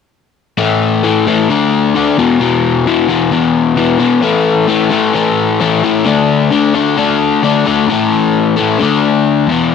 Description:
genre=rock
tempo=131 BPM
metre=4/4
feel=straight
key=unclear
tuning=A4 = 438 Hz
part: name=crunchy overdriven guitar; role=solo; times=0.6-9.7 s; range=E2 to D4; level=-10 LUFS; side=left 5 dB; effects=none
room=moderate spring reverb, RT60 1.1 s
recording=none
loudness=-10 LUFS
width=side -6 dB against mid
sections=0.6-7.9 A section; 7.9-9.7 B section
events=none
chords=0.6 A5; 1.5 D5; 2.2 E5; 4.2 A5; 6.1 D5; 7.9 A5; 8.8 D5

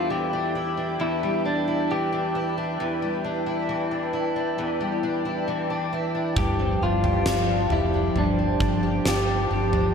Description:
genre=dream pop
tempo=67 BPM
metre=4/4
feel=straight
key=unclear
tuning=A4 = 440 Hz
part: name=electric guitar at the edge of break-up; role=melody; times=0.0-9.7 s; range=D4 to G4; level=-26 LUFS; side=left 1 dB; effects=digital delay
part: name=ethereal airy pad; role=sustained chords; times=0.0-9.9 s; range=F3 to G5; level=-28 LUFS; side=left 1 dB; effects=ensemble chorus, built-in reverb
part: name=fingerpicked twelve-string acoustic guitar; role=arpeggios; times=0.0-9.9 s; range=E2 to G4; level=-28 LUFS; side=left 1 dB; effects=lush chorus, digital delay
part: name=vintage muted fingered electric bass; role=bass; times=6.4-9.9 s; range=F1 to G1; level=-27 LUFS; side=right 1 dB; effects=none
part: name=huge arena drum kit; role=drums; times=6.4-9.9 s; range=kick drum, snare drum, toms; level=-27 LUFS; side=right 1 dB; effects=gated reverb
room=moderate plate reverb, RT60 3.2 s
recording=bright 1980s-style digital production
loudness=-22 LUFS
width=side -6 dB against mid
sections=0.0-9.9 A section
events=none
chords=0.0 Em7; 6.4 G7sus4

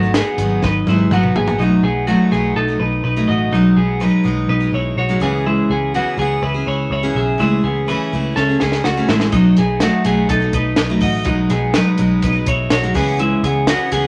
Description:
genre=jangly indie pop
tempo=124 BPM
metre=4/4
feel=straight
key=unclear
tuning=A4 = 437 Hz
part: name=picked steel-string acoustic guitar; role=accompaniment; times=0.0-14.1 s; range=B2 to G#4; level=-22 LUFS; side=equal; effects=none
part: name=twelve-string electric guitar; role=arpeggios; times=0.0-14.1 s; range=F#3 to E5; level=-20 LUFS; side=equal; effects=none
part: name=vintage muted picked electric bass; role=bass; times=0.0-14.1 s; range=G#1 to C#2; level=-24 LUFS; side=equal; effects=none
part: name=compact cocktail drum kit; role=drums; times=0.1-1.6, 8.4-14.0 s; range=hi-hat, kick drum, snare drum, toms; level=-23 LUFS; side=equal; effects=none
room=wet studio reverb, RT60 0.8 s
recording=none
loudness=-16 LUFS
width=mono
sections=0.0-1.6 A section; 1.6-14.1 B section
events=drum fill 0.6-1.6, 8.4-9.3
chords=0.0 G#m7; 1.6 B7; 3.5 G#m7/B; 5.2 C#m7; 7.4 Amaj7/C#; 9.3 B7; 11.3 G#m7/B; 13.0 C#m7

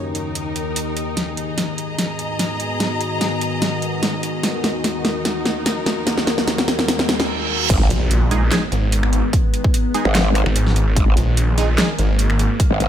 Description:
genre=heavy wobble dubstep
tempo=147 BPM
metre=4/4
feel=half-time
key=G# minor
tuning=A4 = 439 Hz
part: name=evolving wavetable pad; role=sustained chords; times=0.0-12.9 s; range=D#2 to A#4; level=-25 LUFS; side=left 2 dB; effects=chorus, built-in reverb, vintage 12-bit sampler grit, sidechain pumping
part: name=rich studio string section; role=texture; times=0.0-7.3 s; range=D#4 to A#5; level=-27 LUFS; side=left 1 dB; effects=sidechain pumping
part: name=dubstep drum kit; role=drums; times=0.1-12.9 s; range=crash cymbal, finger snaps, handclaps, hi-hat, snare drum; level=-21 LUFS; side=equal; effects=studio ambience
part: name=riser, reverse cymbal and impact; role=sound effects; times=4.6-9.3 s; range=none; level=-27 LUFS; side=right 2 dB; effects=none
part: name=growl bass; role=bass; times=7.7-12.9 s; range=G#1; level=-16 LUFS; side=equal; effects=chorus, overdrive
part: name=electronic kick drum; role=drums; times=7.7-12.7 s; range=none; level=-17 LUFS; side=equal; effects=studio ambience
part: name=snarling distorted saw bass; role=bass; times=7.9-12.5 s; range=G#1 to A#1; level=-17 LUFS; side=equal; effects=distortion, overdrive
part: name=supersaw stab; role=stabs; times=8.3-11.9 s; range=G#3 to G#4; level=-26 LUFS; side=right 5 dB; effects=phaser, vintage 12-bit sampler grit, tape echo
room=light reverb, digital ambience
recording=none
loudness=-17 LUFS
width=side -10 dB against mid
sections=0.0-1.2 A section; 1.2-7.7 B section; 7.7-12.9 C section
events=build-up 1.2-7.7; drum fill 1.2-7.3; filter sweep on ambient pad 1.2-7.7; riser 4.6-7.3; reverse cymbal 6.9-7.7; drop 7.7-12.9; impact 7.7-9.3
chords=0.0 D#; 1.2 G#m7; 4.4 D#m; 7.7 G#m

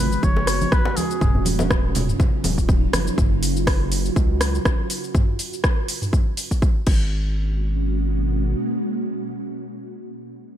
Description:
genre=afro house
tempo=122 BPM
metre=4/4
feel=swing 56% on 16ths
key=G# dorian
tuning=A4 = 440 Hz
part: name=trumpet with cup mute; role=melody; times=0.0-1.5 s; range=G#4 to C#5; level=-28 LUFS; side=left 1 dB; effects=ping-pong delay
part: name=ethereal airy pad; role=sustained chords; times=0.0-10.0 s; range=B2 to F#4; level=-27 LUFS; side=right 1 dB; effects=ensemble chorus, built-in reverb, sidechain pumping
part: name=round analog bass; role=bass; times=0.0-8.6 s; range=D#1 to C#2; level=-23 LUFS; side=equal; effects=sidechain pumping
part: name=house drum kit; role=drums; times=0.1-7.0 s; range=crash cymbal, hi-hat, rim click, shaker, toms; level=-26 LUFS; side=equal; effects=overdrive
part: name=electronic kick drum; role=drums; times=0.2-7.0 s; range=none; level=-19 LUFS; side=equal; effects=overdrive
part: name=congas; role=percussion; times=0.2-3.0 s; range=none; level=-28 LUFS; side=right 3 dB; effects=none
part: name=djembe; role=percussion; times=0.4-3.0 s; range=none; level=-31 LUFS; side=left 4 dB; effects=none
room=little or no reverb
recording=none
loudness=-18 LUFS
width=side -11 dB against mid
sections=0.0-7.1 A section; 7.1-10.6 B section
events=drop 0.0-7.1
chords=0.0 G#m7; 1.2 D#m9; 3.2 F#maj7(no3); 5.1 N.C.; 6.9 G#m11

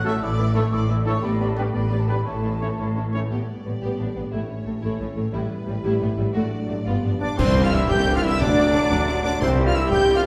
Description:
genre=cinematic, heroic adventure film score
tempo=118 BPM (dotted quarters)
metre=6/8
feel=straight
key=A mixolydian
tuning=A4 = 441 Hz
part: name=rich symphonic violin section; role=melody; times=0.0-10.2 s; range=G4 to G6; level=-36 LUFS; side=equal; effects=none
part: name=mellow hollow silver concert flute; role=second line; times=0.0-3.1, 7.2-10.3 s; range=C5 to E6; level=-34 LUFS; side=equal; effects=none
part: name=warm oboe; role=second line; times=0.0-3.2, 7.2-10.3 s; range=C5 to G5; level=-34 LUFS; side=equal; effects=none
part: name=mellow French horn section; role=sustained chords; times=0.0-10.3 s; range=E3 to G4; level=-34 LUFS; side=equal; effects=none
part: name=concert harp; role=arpeggios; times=0.0-10.3 s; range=G2 to A5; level=-33 LUFS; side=equal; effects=none
part: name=warm trumpet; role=stabs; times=0.0-3.2, 7.2-10.2 s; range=C4 to C#5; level=-32 LUFS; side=equal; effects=none
part: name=rich symphonic cello section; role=bass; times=0.0-10.3 s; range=C2 to A2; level=-29 LUFS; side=equal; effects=none
part: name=rich symphonic double bass section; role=bass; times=0.0-10.3 s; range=G1 to D2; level=-29 LUFS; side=equal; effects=none
part: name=warm clarinet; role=second line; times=0.1-3.2, 7.2-10.2 s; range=C4 to G4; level=-32 LUFS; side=equal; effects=none
part: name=warm symphonic violin section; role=second line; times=0.1-10.3 s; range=G3 to G5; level=-35 LUFS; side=equal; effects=none
part: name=dark symphonic viola section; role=accompaniment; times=0.1-10.2 s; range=E3 to E4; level=-33 LUFS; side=equal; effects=none
part: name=clear trombone section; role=sustained chords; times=0.1-3.2, 7.4-10.3 s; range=A2 to A3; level=-36 LUFS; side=equal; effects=none
part: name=cymbal swell, clash cymbals and concert bass drum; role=percussion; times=5.3-8.0 s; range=none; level=-33 LUFS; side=equal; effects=none
part: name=concert snare drum, clash cymbals and concert bass drum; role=drums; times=7.4-10.3 s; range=none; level=-30 LUFS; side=equal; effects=none
room=wet recital hall reverb, RT60 1.6 s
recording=heard from further back in the room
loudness=-22 LUFS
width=mono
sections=0.0-3.3 A section; 3.3-7.4 B section; 7.4-10.3 C section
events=band accent 7.4-7.7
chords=0.2 Asus4; 1.2 G/A; 2.3 A; 3.3 G/A; 4.3 A; 5.3 Em/A; 6.3 D/A; 6.9 G7; 7.4 Cadd9; 8.4 D; 9.4 C

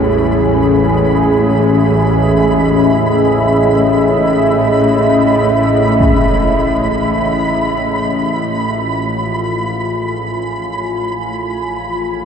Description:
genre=dark ambient drone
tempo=free time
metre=none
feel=none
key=unclear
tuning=A4 = 442 Hz
part: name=dark analog pad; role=sustained chords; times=0.0-12.2 s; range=C#4 to Ab5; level=-14 LUFS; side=left 1 dB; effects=chorus
part: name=old church bells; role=arpeggios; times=0.0-7.1 s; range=E3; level=-28 LUFS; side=left 2 dB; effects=none
part: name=bowed-like drone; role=drone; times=0.0-12.2 s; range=A1 to A2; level=-16 LUFS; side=right 1 dB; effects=built-in reverb
part: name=flickering grainy texture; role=texture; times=0.0-12.2 s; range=B5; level=-21 LUFS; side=right 1 dB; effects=built-in reverb
part: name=impact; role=percussion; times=6.0-6.3 s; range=none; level=-18 LUFS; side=right 1 dB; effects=low-pass filter on sfx
room=wet huge ambient reverb, RT60 8.6 s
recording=dark, warm production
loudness=-11 LUFS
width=side -7 dB against mid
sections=0.0-12.2 A section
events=fade-out 5.1-12.2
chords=0.0 C#m7; 8.6 Fmadd9

